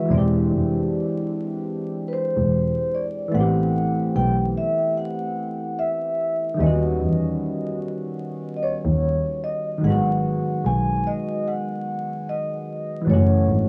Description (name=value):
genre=lo-fi hip hop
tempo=74 BPM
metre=4/4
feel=swing 57% on 16ths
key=unclear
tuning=A4 = 437 Hz
part: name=vibraphone with soft mallets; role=melody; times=0.0-13.7 s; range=B4 to G#5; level=-28 LUFS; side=equal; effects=cassette tape, tape echo
part: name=soft electric-piano-like synth keys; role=accompaniment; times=0.0-13.7 s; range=D#3 to G4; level=-27 LUFS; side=equal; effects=chorus, cassette tape
part: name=warm double bass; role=bass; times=0.1-13.7 s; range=E1 to E2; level=-24 LUFS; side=equal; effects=transformer saturation
room=wet booth ambience, RT60 0.2 s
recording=home recording on cassette, vinyl crackle, small room ambience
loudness=-23 LUFS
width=mono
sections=0.0-13.7 A section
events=none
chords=0.1 E7alt; 3.3 Am9; 6.6 D#7alt; 9.8 G#m7; 13.1 F#m7